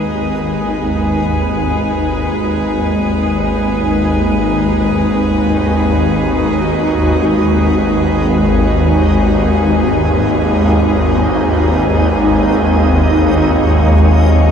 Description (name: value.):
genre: dark ambient drone.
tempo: free time.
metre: none.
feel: none.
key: G# minor.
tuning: A4 = 441 Hz.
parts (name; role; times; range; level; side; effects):
bright chamber cello section; sustained chords; 0.0-14.5 s; G#3 to C#5; -16 LUFS; left 1 dB; none.
swarming drone; drone; 0.0-14.5 s; G#1 to D#2; -13 LUFS; equal; built-in reverb.
backwards swelling texture; texture; 0.1-14.5 s; D#4 to D#5; -23 LUFS; equal; built-in reverb.
room: wet cathedral reverb, RT60 5.1 s.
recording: dark, warm production.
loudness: -11 LUFS.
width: side -7 dB against mid.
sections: 0.0-14.5 A section.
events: fade-in on synth texture 0.0-14.5.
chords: 0.0 G#m.